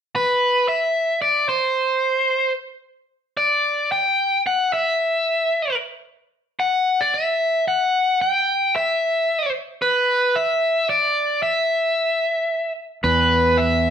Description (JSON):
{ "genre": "post-rock", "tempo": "112 BPM", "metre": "3/4", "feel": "straight", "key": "E minor", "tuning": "A4 = 440 Hz", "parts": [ { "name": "overdriven electric guitar", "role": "melody", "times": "0.2-13.9 s", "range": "B4 to G5", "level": "-18 LUFS", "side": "equal", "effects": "none" }, { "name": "growling fingered electric bass", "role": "bass", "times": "13.0-13.9 s", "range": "E2", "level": "-20 LUFS", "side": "right 2 dB", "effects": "overdrive" } ], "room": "wet studio reverb, RT60 0.9 s", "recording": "band playing live in one room", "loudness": "-18 LUFS", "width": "side -8 dB against mid", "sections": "0.1-13.0 A section", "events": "none", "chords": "0.1 N.C.; 13.0 E5", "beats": "| 0.15 0.68 1.22 | 1.76 2.30 2.84 | 3.37 3.91 4.45 | 4.99 5.52 6.06 | 6.60 7.13 7.67 | 8.21 8.74 9.28 | 9.82 10.35 10.89 | 11.43 11.96 12.50 | 13.03 13.57" }